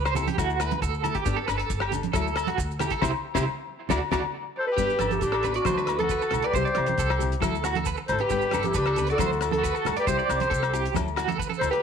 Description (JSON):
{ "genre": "highlife guitar band", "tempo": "136 BPM", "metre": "4/4", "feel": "straight", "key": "unclear", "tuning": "A4 = 440 Hz", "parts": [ { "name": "electric guitar at the edge of break-up", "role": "arpeggios", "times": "0.0-11.8 s", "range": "E4 to D5", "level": "-29 LUFS", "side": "right 11 dB", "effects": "tremolo, tape echo" }, { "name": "upright bass", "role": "bass", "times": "0.0-11.7 s", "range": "G1 to G2", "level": "-31 LUFS", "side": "equal", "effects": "none" }, { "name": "nylon-string guitar", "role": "accompaniment", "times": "0.1-11.8 s", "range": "F#3 to A4", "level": "-34 LUFS", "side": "left 11 dB", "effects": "none" }, { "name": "cloth-damped thuddy drum kit", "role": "drums", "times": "0.1-11.8 s", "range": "hi-hat, kick drum, rim click, snare drum", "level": "-33 LUFS", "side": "left 3 dB", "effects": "none" }, { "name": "agogo bells", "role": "percussion", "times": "0.1-11.7 s", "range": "none", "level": "-33 LUFS", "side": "left 15 dB", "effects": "none" }, { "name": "maracas", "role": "percussion", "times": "0.1-11.7 s", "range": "none", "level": "-41 LUFS", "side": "right 17 dB", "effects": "none" }, { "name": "congas", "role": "percussion", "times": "0.2-11.7 s", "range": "none", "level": "-34 LUFS", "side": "right 10 dB", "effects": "none" }, { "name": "growling clarinet", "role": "melody", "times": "4.6-11.8 s", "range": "F#4 to C5", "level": "-26 LUFS", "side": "equal", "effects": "none" }, { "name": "bright trumpet", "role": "second line", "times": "4.6-11.8 s", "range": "D4 to A4", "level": "-33 LUFS", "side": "left 12 dB", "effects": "none" } ], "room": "light reverb, studio reverb", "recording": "1960s-style stereo with parts hard left and right", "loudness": "-23 LUFS", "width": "side -7 dB against mid", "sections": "0.0-4.8 A section; 4.8-11.8 B section", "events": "band accent 3.0-4.8", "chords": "0.4 Dadd9; 1.3 Gadd9; 2.1 Dadd9; 3.0 C; 3.9 D; 4.8 Gadd9; 5.7 Dadd9; 6.5 C; 7.4 Dadd9; 8.3 Gadd9; 9.2 Dadd9; 10.1 C; 10.9 Dadd9" }